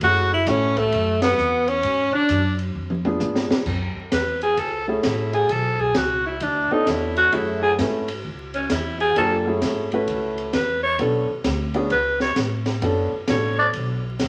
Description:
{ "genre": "jazz, small-group swing and bop", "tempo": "131 BPM", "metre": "4/4", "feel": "swing 65% on 8ths", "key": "F# minor", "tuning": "A4 = 437 Hz", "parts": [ { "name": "clear tenor saxophone", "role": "melody", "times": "0.0-2.6 s", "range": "A3 to F#4", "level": "-22 LUFS", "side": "equal", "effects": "none" }, { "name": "growling alto saxophone", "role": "second line", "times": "0.0-13.7 s", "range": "A3 to D5", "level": "-24 LUFS", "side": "equal", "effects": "none" }, { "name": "warm concert grand piano", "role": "accompaniment", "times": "0.0-14.0 s", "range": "A3 to B4", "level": "-27 LUFS", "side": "equal", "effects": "none" }, { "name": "upright bass", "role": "bass", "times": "0.0-14.3 s", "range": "F#1 to G#2", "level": "-30 LUFS", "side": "equal", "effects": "none" }, { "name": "open jazz drum kit", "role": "drums", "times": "0.0-14.3 s", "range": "crash cymbal, hi-hat, kick drum, ride cymbal, snare drum, toms", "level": "-30 LUFS", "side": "equal", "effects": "none" } ], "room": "wet large studio reverb, RT60 1.0 s", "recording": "vinyl crackle", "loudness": "-22 LUFS", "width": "mono", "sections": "0.0-3.7 A section; 3.7-14.3 B section", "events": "band accent 1.2; drum fill 2.8-3.7; alto saxophone solo 3.7-14.3", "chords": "0.0 F#m9; 1.8 Dmaj7#11; 2.8 Fdim7; 3.7 F#m9; 5.5 Bm9; 7.3 F#m9; 11.0 Bm9" }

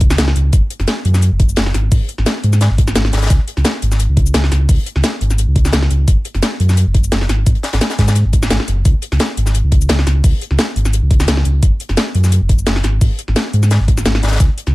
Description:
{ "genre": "liquid drum and bass", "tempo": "173 BPM", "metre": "4/4", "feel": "swing 54% on 16ths", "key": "unclear", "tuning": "A4 = 440 Hz", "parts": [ { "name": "sub bass with octave", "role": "bass", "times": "0.0-14.7 s", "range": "Gb1 to Ab2", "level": "-14 LUFS", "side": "equal", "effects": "none" }, { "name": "deep reggae drum kit", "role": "drums", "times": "0.0-14.7 s", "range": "hi-hat, snare drum", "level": "-25 LUFS", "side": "left 2 dB", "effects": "high-pass filter on hats, high-pass filter on snare, high-pass filter on room" }, { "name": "drum and bass drum kit", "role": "drums", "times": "0.0-14.7 s", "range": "hi-hat, shaker, snare drum", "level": "-19 LUFS", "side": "equal", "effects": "none" }, { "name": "electronic kick drum", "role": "drums", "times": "0.0-14.5 s", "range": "none", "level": "-12 LUFS", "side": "equal", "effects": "none" } ], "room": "little or no reverb", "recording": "lossy compression artefacts", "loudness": "-12 LUFS", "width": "side -20 dB against mid", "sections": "0.0-14.7 A section", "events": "none", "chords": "none" }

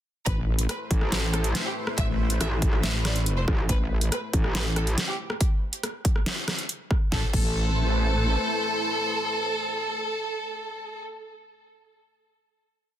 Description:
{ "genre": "heavy wobble dubstep", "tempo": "140 BPM", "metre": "4/4", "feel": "half-time", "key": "A minor", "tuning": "A4 = 440 Hz", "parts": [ { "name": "rich chamber violin section", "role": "melody", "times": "0.3-11.0 s", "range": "G4 to E5", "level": "-30 LUFS", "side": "equal", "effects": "tape echo" }, { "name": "lush unison pad", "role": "sustained chords", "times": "0.7-10.8 s", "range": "A3 to C5", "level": "-34 LUFS", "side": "left 1 dB", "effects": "chorus, phaser, sidechain pumping" }, { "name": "wobble bass", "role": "bass", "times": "0.3-4.1, 7.1-8.4 s", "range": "A1", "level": "-25 LUFS", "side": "equal", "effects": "chorus, overdrive" }, { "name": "dubstep drum kit", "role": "drums", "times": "0.3-7.5 s", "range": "crash cymbal, hi-hat, rim click, snare drum", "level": "-29 LUFS", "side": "equal", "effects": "overdrive" }, { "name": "electronic kick drum", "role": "drums", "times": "0.3-7.5 s", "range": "none", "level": "-25 LUFS", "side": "equal", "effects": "overdrive" }, { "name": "metallic wobble bass", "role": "bass", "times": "0.9-5.0 s", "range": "A1", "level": "-26 LUFS", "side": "equal", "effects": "distortion, chorus, overdrive" } ], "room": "digital ambience", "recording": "dense, heavily limited modern master", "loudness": "-23 LUFS", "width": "side -11 dB against mid", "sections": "0.3-7.1 drop; 7.1-10.5 final chord", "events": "drop 0.3-7.1", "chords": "0.3 Amadd9" }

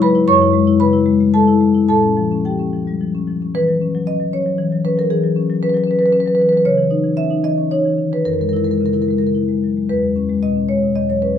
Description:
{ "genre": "classical, contemporary piece for solo marimba", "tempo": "107-119 BPM", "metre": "3/4", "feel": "rubato", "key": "unclear", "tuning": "A4 = 435 Hz", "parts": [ { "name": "marimba with soft mallets", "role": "solo", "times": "0.0-11.4 s", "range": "E2 to C#6", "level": "-14 LUFS", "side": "left 2 dB", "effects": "none" } ], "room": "light reverb", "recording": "dark, warm production", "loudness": "-14 LUFS", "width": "side -8 dB against mid", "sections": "0.0-3.6 A section; 3.6-11.4 B section", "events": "none", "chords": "0.3 F#m9; 1.9 A#m6; 3.6 C#madd11/E; 6.7 C#madd9; 8.3 F#9; 9.9 E6" }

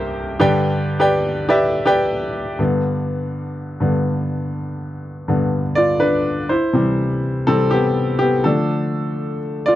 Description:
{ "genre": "pop", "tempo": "123 BPM", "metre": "4/4", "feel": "straight", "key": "unclear", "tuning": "A4 = 440 Hz", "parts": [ { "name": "clear grand piano", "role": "solo", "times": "0.0-9.8 s", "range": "C2 to G5", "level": "-17 LUFS", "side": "equal", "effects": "none" } ], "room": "light reverb", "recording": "dry, close 1970s-style studio recording", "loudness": "-16 LUFS", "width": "side -14 dB against mid", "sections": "0.0-2.6 A section; 2.6-6.5 B section; 6.5-9.8 C section", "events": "grand piano solo 2.6-6.5, 6.5-9.8", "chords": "0.4 G; 6.5 C; 8.5 Dm" }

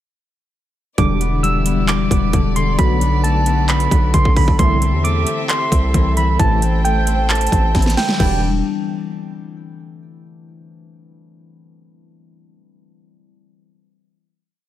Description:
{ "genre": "hip hop, trap", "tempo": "133 BPM", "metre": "4/4", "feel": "half-time", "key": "E minor", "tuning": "A4 = 439 Hz", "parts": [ { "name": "soft electric-piano-like synth keys", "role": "melody", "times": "1.0-8.4 s", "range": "G5 to E6", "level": "-21 LUFS", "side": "right 3 dB", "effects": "chorus, low-pass filter" }, { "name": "concert harp", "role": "accompaniment", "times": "1.0-8.4 s", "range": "D3 to D4", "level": "-22 LUFS", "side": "left 7 dB", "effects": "low-pass filter" }, { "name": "warm chamber string section", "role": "sustained chords", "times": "1.0-8.4 s", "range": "E3 to G5", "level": "-28 LUFS", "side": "right 1 dB", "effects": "none" }, { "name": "mellow synth brass", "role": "stabs", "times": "1.0-8.4 s", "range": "B1 to G3", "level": "-25 LUFS", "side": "right 1 dB", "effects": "chorus" }, { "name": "hard-hitting 808-style bass", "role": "bass", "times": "1.0-8.6 s", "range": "E1 to E2", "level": "-18 LUFS", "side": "equal", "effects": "none" }, { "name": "trap drum kit", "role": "drums", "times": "1.0-8.3 s", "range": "crash cymbal, handclaps, hi-hat, kick drum, snare drum", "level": "-18 LUFS", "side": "equal", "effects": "overdrive" } ], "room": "digital ambience", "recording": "none", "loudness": "-14 LUFS", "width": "side -12 dB against mid", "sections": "1.0-8.2 hook; 8.2-10.0 final chord", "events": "drum fill 7.7-8.2", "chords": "1.0 Em7; 2.8 Bm7; 4.6 C6; 6.4 Am7; 8.2 Em7" }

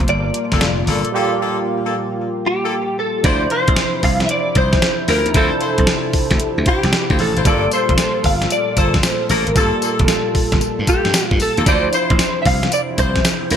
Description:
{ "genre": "R&B, new jack swing", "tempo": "114 BPM", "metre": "4/4", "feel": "swing 67% on 16ths", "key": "D minor", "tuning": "A4 = 439 Hz", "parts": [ { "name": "barky tine electric piano", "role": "accompaniment", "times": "0.0-13.6 s", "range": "E3 to A5", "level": "-24 LUFS", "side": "right 5 dB", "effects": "ensemble chorus" }, { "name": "chorused pulse-width pad", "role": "sustained chords", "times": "0.0-13.6 s", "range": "Bb2 to A4", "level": "-26 LUFS", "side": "left 1 dB", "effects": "none" }, { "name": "slap bass", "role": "bass", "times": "0.0-13.6 s", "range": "F1 to G2", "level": "-20 LUFS", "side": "equal", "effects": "none" }, { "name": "crisp 8-bit digital drum machine", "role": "drums", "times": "0.0-13.6 s", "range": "hi-hat, kick drum, snare drum, tambourine", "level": "-18 LUFS", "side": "equal", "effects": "gated reverb" }, { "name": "direct-recorded clean electric guitar", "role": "melody", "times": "0.1-13.6 s", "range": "G4 to F5", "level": "-20 LUFS", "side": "equal", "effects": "ensemble chorus" }, { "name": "warm horn section", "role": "stabs", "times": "0.5-13.6 s", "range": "Bb3 to C5", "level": "-24 LUFS", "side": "left 4 dB", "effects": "none" } ], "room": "moderate plate reverb, RT60 1.7 s", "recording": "bright 1980s-style digital production", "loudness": "-14 LUFS", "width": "side -8 dB against mid", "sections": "0.0-3.2 A section; 3.2-13.6 B section", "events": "break 1.1-3.2", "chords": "0.0 Gm9; 3.2 Dm9; 7.5 Gm9; 11.7 Dm9" }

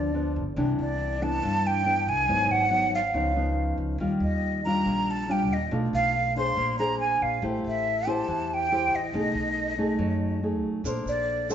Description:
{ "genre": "bossa nova", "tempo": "140 BPM", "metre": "4/4", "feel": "straight", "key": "unclear", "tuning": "A4 = 440 Hz", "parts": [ { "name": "breathy hollow jazz flute", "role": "melody", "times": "0.0-11.5 s", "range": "D5 to C6", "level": "-26 LUFS", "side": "right 2 dB", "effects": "none" }, { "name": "nylon-string guitar", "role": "accompaniment", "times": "0.0-11.5 s", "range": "G2 to C5", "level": "-28 LUFS", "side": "left 1 dB", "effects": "none" }, { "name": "upright bass", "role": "bass", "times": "0.0-11.5 s", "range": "G1 to G2", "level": "-32 LUFS", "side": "equal", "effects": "none" }, { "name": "tube shaker", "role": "percussion", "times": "10.9-11.5 s", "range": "none", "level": "-41 LUFS", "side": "right 5 dB", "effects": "none" } ], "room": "wet large studio reverb, RT60 1.4 s", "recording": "band playing live in one room, nothing above 7.7 kHz", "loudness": "-24 LUFS", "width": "side -9 dB against mid", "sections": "0.0-11.5 A section", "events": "none", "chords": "0.0 G7; 0.6 Cmaj9; 2.3 G#m7; 3.1 C#9; 4.0 Ebmaj9; 5.7 Bm7b5; 6.6 Bb9; 7.4 Am7; 9.1 B6; 10.9 Bbmaj9" }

